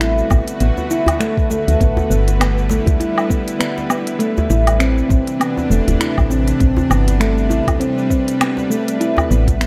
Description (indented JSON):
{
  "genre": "organic downtempo",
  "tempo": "100 BPM",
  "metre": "4/4",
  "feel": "swing 57% on 16ths",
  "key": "A dorian",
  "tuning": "A4 = 441 Hz",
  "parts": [
    { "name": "bowed-like drone", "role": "sustained chords", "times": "0.0-9.7 s", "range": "C3 to B4", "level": "-26 LUFS", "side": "equal", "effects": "built-in reverb, sidechain pumping" },
    { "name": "handpan", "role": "arpeggios", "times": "0.0-9.7 s", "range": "A3 to E4", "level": "-21 LUFS", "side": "equal", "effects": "delay" },
    { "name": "woody FM bass", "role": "bass", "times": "0.0-9.7 s", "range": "E1 to D2", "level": "-19 LUFS", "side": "equal", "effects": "sidechain pumping" },
    { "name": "organic electronic drum kit", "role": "drums", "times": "0.0-9.7 s", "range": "cabasa, finger snaps, hi-hat, woodblock", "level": "-25 LUFS", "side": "equal", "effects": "none" },
    { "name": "electronic kick drum", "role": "drums", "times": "0.3-9.6 s", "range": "none", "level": "-19 LUFS", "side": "equal", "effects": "none" },
    { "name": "djembe", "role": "percussion", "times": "0.3-9.6 s", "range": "none", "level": "-26 LUFS", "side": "equal", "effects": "none" }
  ],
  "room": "light reverb",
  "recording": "none",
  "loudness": "-16 LUFS",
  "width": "mono",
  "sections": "0.0-9.7 A section",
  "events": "none",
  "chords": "0.0 Bm7/A; 1.8 Em7; 4.2 Cmaj9/A; 6.6 Am11; 9.0 Bm7"
}